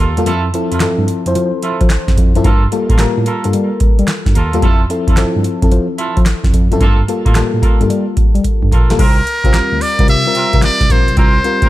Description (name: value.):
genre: R&B, new jack swing.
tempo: 110 BPM.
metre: 4/4.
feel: swing 66% on 16ths.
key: F major.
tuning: A4 = 444 Hz.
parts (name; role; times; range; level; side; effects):
mellow FM electric piano; accompaniment; 0.0-11.7 s; F3 to C5; -18 LUFS; left 3 dB; chorus.
mellow horn section; stabs; 0.0-11.7 s; Bb3 to Bb4; -22 LUFS; right 4 dB; none.
tine electric piano; bass; 0.0-11.7 s; Bb1 to G3; -18 LUFS; equal; auto-pan.
booming analog drum machine; drums; 0.2-11.7 s; crash cymbal, handclaps, hi-hat, kick drum, snare drum; -13 LUFS; equal; none.
trumpet with metal mute; melody; 9.0-11.7 s; Bb4 to E5; -15 LUFS; equal; none.
room: digital ambience.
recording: none.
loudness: -11 LUFS.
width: side -15 dB against mid.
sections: 0.0-9.0 A section; 9.0-11.7 B section.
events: kick muted 0.3-1.4; drum fill 8.4-9.0.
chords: 0.3 Fmaj7; 2.4 Gm9; 4.6 Fmaj7; 6.8 Gm9; 9.0 C7sus4.